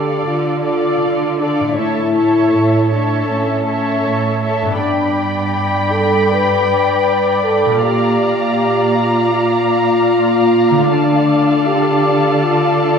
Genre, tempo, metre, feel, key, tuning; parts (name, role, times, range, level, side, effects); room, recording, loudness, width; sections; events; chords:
cinematic, emotional film score for orchestra; 79 BPM; 4/4; rubato; A4 = 440 Hz
muted symphonic violin section; second line; 0.0-13.0 s; D5 to B5; -20 LUFS; left 2 dB
muted symphonic viola section; accompaniment; 0.0-13.0 s; A4 to D5; -21 LUFS; right 2 dB
warm French horn section; sustained chords; 0.0-13.0 s; C#4 to B4; -16 LUFS; left 1 dB
concert harp; arpeggios; 0.0-13.0 s; G2 to D5; -24 LUFS; left 5 dB
muted symphonic cello section; bass; 0.0-13.0 s; G2 to D3; -21 LUFS; right 3 dB
wet scoring stage reverb, RT60 1.6 s; minimal, uncompressed stereo recording; -12 LUFS; side -6 dB against mid
0.0-13.0 A section
0.0 Dm; 1.8 A; 4.8 G; 7.8 Bb; 10.9 Dm